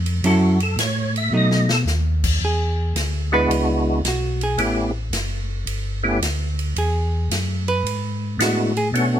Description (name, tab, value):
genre	soul jazz organ trio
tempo	110 BPM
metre	4/4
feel	swing 67% on 8ths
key	E mixolydian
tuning	A4 = 440 Hz
part	mellow tonewheel organ	bass	0.0-9.2 s	F#1 to B2	-22 LUFS	equal	chorus vibrato, slow rotary speaker
part	swinging big-band drum kit	drums	0.1-9.1 s	crash cymbal, hi-hat, kick drum, ride cymbal, snare drum	-27 LUFS	equal	none
part	hollow-body jazz guitar	accompaniment	0.2-8.9 s	F#3 to B4	-22 LUFS	right 2 dB	none
part	percussive tonewheel organ	melody	0.3-9.2 s	G#3 to E5	-21 LUFS	equal	slow rotary speaker, chorus vibrato
room	light reverb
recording	minimal, uncompressed stereo recording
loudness	-18 LUFS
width	side -10 dB against mid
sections	0.0-2.4 A section; 2.4-9.2 A section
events	tonewheel organ solo 0.0-2.4; drum fill 1.3-1.9; hollow-body jazz guitar solo 2.4-9.2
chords	0.2 F#m7; 1.3 B7; 2.4 E7; 4.6 A7; 6.8 E7